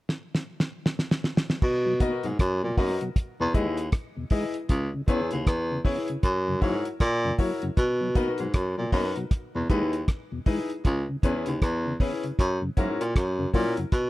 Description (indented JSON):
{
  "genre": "roots reggae",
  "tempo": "78 BPM",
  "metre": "4/4",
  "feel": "swing 60% on 16ths",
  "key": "B major",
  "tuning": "A4 = 440 Hz",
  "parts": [
    { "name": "cloth-damped thuddy drum kit", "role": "drums", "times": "0.1-14.1 s", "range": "crash cymbal, hi-hat, kick drum, rim click, snare drum", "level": "-25 LUFS", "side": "equal", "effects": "none" },
    { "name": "breathy baritone saxophone", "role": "bass", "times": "1.6-14.1 s", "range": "C#2 to B2", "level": "-26 LUFS", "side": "equal", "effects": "none" },
    { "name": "mellow tonewheel organ", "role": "accompaniment", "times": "1.9-13.9 s", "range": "E2 to E4", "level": "-33 LUFS", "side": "left 1 dB", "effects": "chorus vibrato, slow rotary speaker" },
    { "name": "clear concert grand piano", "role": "stabs", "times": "2.0-13.8 s", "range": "C#4 to D#5", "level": "-32 LUFS", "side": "left 4 dB", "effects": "none" }
  ],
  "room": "little or no reverb",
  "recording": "none",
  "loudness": "-24 LUFS",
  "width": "side -18 dB against mid",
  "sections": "0.0-1.6 A section; 1.6-13.9 B section",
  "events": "drum fill 0.1-1.6",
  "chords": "0.0 N.C.; 1.6 Bmaj7; 3.2 Emaj7; 4.7 C#m7; 6.2 F#7; 7.8 Bmaj7; 9.3 Emaj7; 10.8 C#m7; 12.4 F#7"
}